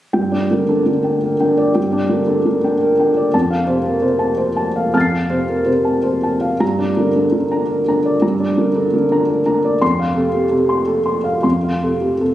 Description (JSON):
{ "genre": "neoclassical minimalist piano", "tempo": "112 BPM", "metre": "3/4", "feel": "uneven beats, rubato", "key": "unclear", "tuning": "A4 = 438 Hz", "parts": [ { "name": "felt-muted upright piano", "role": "solo", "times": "0.1-12.3 s", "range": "F2 to C7", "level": "-14 LUFS", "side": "equal", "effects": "slapback echo" } ], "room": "moderate concert hall reverb, RT60 2.5 s", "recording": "recorded on a phone in the room, studio reverb, compression", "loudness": "-14 LUFS", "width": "side -13 dB against mid", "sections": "0.1-12.3 A section", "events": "none", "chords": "0.1 Gm; 3.3 F; 6.6 Gm; 9.8 F", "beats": "| 0.14 0.70 1.24 | 1.76 2.29 2.82 | 3.34 3.85 4.39 | 4.94 5.50 6.05 | 6.61 7.16 7.70 | 8.23 8.76 9.29 | 9.81 10.33 10.87 | 11.44 12.02" }